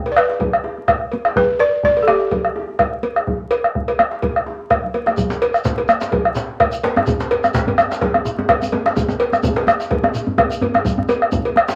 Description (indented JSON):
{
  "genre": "west african traditional, West African drum ensemble",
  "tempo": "126 BPM",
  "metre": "4/4",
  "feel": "swing 55% on 16ths",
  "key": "G major pentatonic",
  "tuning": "A4 = 440 Hz",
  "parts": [
    { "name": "balafon", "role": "melody", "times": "0.0-4.7 s", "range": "G4 to G5", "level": "-19 LUFS", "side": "equal", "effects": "none" },
    { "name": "congas", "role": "percussion", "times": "0.1-11.7 s", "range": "none", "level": "-31 LUFS", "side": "equal", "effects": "none" },
    { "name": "cowbell", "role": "percussion", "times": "0.1-11.6 s", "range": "none", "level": "-25 LUFS", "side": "equal", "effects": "none" },
    { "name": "djembe", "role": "percussion", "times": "0.1-11.8 s", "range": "none", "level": "-32 LUFS", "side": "equal", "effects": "none" },
    { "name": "bombo", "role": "percussion", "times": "0.2-11.7 s", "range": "none", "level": "-20 LUFS", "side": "equal", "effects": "none" },
    { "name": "shekere", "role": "percussion", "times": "5.2-11.8 s", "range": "none", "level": "-32 LUFS", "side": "equal", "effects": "none" },
    { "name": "djembe", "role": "percussion", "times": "5.3-11.8 s", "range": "none", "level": "-25 LUFS", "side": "equal", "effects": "none" }
  ],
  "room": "moderate club reverb, RT60 0.7 s",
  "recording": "vinyl crackle",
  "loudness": "-18 LUFS",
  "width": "mono",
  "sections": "0.0-5.2 A section; 5.2-11.8 B section",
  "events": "drum fill 4.8-5.2",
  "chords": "none"
}